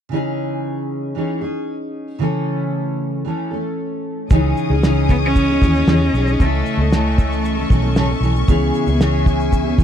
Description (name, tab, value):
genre	acoustic pop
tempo	115 BPM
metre	4/4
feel	straight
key	C# minor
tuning	A4 = 439 Hz
part	fingerpicked steel-string acoustic guitar	accompaniment	0.1-9.8 s	C#3 to A4	-20 LUFS	equal	double-tracked left and right
part	rich studio string section	sustained chords	4.3-9.8 s	A4 to D#6	-28 LUFS	left 5 dB	none
part	vintage muted fingered electric bass	bass	4.3-9.8 s	B1 to E2	-19 LUFS	equal	none
part	cloth-damped thuddy drum kit	drums	4.3-9.8 s	kick drum, shaker, snare drum	-15 LUFS	equal	none
part	rich cello	melody	5.1-8.2 s	A3 to C#4	-21 LUFS	equal	none
room	little or no reverb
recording	dry, close 1970s-style studio recording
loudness	-16 LUFS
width	side -9 dB against mid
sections	0.1-4.3 A section; 4.3-9.8 B section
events	none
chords	0.1 C#madd9; 2.2 A/C#; 4.3 C#madd9; 6.4 A/C#; 8.5 E6/C#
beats	| 0.11 0.63 1.16 1.68 | 2.21 2.73 3.26 3.78 | 4.31 4.83 5.35 5.87 | 6.40 6.92 7.44 7.96 | 8.48 9.00 9.53